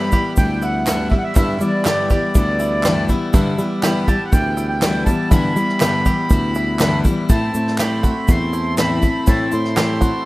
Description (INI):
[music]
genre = indie folk with a building arrangement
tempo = 121 BPM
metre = 4/4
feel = straight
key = G major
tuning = A4 = 441 Hz
[part]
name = accordion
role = melody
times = 0.0-10.3 s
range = D5 to C6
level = -23 LUFS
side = right 1 dB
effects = tape echo
[part]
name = picked steel-string acoustic guitar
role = accompaniment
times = 0.0-10.3 s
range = G2 to E4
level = -21 LUFS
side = left 2 dB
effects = none
[part]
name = hand-pumped harmonium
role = sustained chords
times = 0.0-10.3 s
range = E4 to A5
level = -34 LUFS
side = right 2 dB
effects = none
[part]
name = bluegrass banjo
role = arpeggios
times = 0.0-10.3 s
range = E4 to G4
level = -30 LUFS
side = right 5 dB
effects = none
[part]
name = picked electric bass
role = bass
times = 0.0-10.1 s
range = D2 to G3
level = -22 LUFS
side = equal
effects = none
[part]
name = vintage brush drum kit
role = drums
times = 0.1-10.1 s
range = hi-hat, kick drum, snare drum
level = -17 LUFS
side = equal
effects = none
[part]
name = tube shaker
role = percussion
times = 0.1-10.1 s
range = none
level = -33 LUFS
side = right 2 dB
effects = none
[part]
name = group handclap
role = percussion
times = 0.9-9.9 s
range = none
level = -28 LUFS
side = right 2 dB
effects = none
[sound]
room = small room ambience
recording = rough home demo mix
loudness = -15 LUFS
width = side -19 dB against mid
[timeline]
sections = 0.0-10.3 A section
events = none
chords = 0.0 G6; 7.3 Am